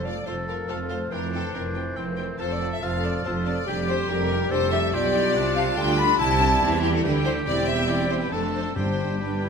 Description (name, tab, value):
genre	quick classical-period movement for symphony orchestra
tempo	141 BPM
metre	3/4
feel	straight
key	F major, C major from 4.9 s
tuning	A4 = 442 Hz
part	mellow clarinet	second line	0.0-9.5 s	C4 to C5	-34 LUFS	left 2 dB	none
part	mellow hollow concert flute	second line	0.0-9.5 s	G4 to B5	-30 LUFS	left 1 dB	none
part	rich studio violin section	second line	0.0-9.5 s	G4 to B5	-28 LUFS	left 5 dB	none
part	dark bassoon	accompaniment	0.0-9.5 s	E3 to A3	-34 LUFS	right 4 dB	none
part	dark French horn section	sustained chords	0.0-9.5 s	E3 to C5	-32 LUFS	left 6 dB	none
part	clear studio cello section	bass	0.0-9.5 s	E2 to E3	-29 LUFS	right 4 dB	none
part	rich studio double bass section	bass	0.0-9.5 s	E1 to E2	-30 LUFS	right 2 dB	none
part	rich studio violin section	melody	0.1-9.5 s	E5 to A5	-39 LUFS	left 3 dB	none
part	rich studio viola section	accompaniment	0.1-9.5 s	G3 to G4	-34 LUFS	right 3 dB	none
part	clear oboe	second line	0.3-9.5 s	C4 to A4	-33 LUFS	right 1 dB	none
part	timpani	percussion	6.2-9.4 s	G2 to C3	-32 LUFS	left 2 dB	none
room	wet recital hall reverb, RT60 1.6 s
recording	none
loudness	-21 LUFS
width	side -6 dB against mid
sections	0.0-9.5 A section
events	none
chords	0.0 F; 1.1 C7/F; 2.4 F; 3.7 Gm7/F; 4.9 G7/B; 6.2 C; 7.5 C/E; 8.3 Dm7/F; 8.8 G